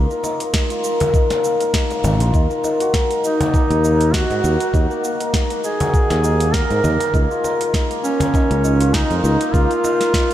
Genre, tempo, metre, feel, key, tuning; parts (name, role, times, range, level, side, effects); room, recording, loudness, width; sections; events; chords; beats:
organic downtempo; 100 BPM; 4/4; swing 55% on 16ths; Eb minor; A4 = 442 Hz
santur; arpeggios; 0.0-10.3 s; Bb3 to Bb4; -20 LUFS; left 2 dB; tape echo
sustaining fretless electric bass; bass; 0.0-9.7 s; Ab1 to Ab2; -18 LUFS; equal; sidechain pumping
afro-pop drum kit; drums; 0.1-10.3 s; cabasa, hi-hat, snare drum; -27 LUFS; right 1 dB
cajon; percussion; 0.2-10.0 s; -28 LUFS; left 1 dB
electronic kick drum; drums; 0.5-10.3 s; -18 LUFS; equal
mellow duduk; melody; 3.2-10.3 s; Db4 to Bb4; -20 LUFS; right 1 dB; tape echo
wet cathedral reverb, RT60 5.5 s; dreamy mix soaked in reverb; -15 LUFS; side -12 dB against mid
0.0-10.3 A section
0.0 Db6 (rootless); 2.3 Ebm; 7.1 Db6
0.54 1.14 1.74 | 2.34 2.94 3.54 4.14 | 4.74 5.34 5.94 6.54 | 7.14 7.74 8.34 8.94 | 9.54 10.14